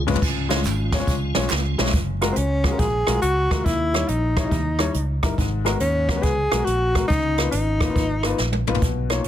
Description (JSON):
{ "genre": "uptempo gospel", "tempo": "139 BPM", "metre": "4/4", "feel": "swing 66% on 8ths", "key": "unclear", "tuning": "A4 = 440 Hz", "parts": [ { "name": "tonewheel organ", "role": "sustained chords", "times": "0.0-1.9 s", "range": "G#3 to E#4", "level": "-32 LUFS", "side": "right 1 dB", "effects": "slow rotary speaker, chorus vibrato, plate reverb" }, { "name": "fingered electric bass", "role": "bass", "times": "0.0-9.3 s", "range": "F#1 to D#2", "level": "-24 LUFS", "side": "equal", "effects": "none" }, { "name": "warm upright piano", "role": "accompaniment", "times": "0.1-9.3 s", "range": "G#2 to D#5", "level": "-27 LUFS", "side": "left 5 dB", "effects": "plate reverb" }, { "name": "jazz brush drum kit", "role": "drums", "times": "0.1-9.3 s", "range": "crash cymbal, hi-hat, kick drum, rim click, snare drum, toms", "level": "-23 LUFS", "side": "right 1 dB", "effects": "soft clipping on snare" }, { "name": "tambourine and handclaps", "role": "percussion", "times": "0.1-1.9 s", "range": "none", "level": "-35 LUFS", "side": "right 6 dB", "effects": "none" }, { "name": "breathy tenor saxophone", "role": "melody", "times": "2.3-9.3 s", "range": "B#3 to G#4", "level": "-23 LUFS", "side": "left 1 dB", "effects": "plate reverb" } ], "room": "light reverb", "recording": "dense, heavily limited modern master", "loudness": "-19 LUFS", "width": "side -11 dB against mid", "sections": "0.2-1.9 A section; 1.9-9.3 B section", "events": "drum fill 0.0, 1.5-1.9, 8.4-8.8", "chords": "0.2 C#; 1.9 F#maj9; 3.7 D#7b9; 5.4 G#m9; 7.1 C#13" }